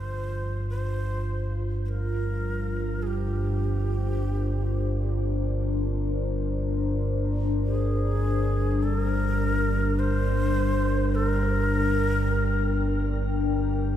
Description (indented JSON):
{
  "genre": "dark ambient drone",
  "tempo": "free time",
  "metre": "none",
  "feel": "none",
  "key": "G minor",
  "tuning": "A4 = 440 Hz",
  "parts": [
    { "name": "breathy mellow shakuhachi", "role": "melody", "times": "0.0-13.5 s", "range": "G4 to C5", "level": "-32 LUFS", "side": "left 1 dB", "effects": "shimmer reverb, tape echo" },
    { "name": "dark analog pad", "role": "sustained chords", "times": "0.1-14.0 s", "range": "F3 to G5", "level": "-30 LUFS", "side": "left 5 dB", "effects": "chorus, phaser, shimmer reverb" },
    { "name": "deep rumbling drone", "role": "drone", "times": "0.0-14.0 s", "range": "G1 to G2", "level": "-26 LUFS", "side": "right 1 dB", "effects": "built-in reverb" }
  ],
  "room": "moderate plate reverb, RT60 3.4 s",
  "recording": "echo-heavy mix",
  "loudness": "-24 LUFS",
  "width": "side -10 dB against mid",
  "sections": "0.0-14.0 A section",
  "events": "fade-in on analog synth pad 0.0-14.0; fade-in on shakuhachi 0.0-14.0",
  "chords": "0.0 Gm7"
}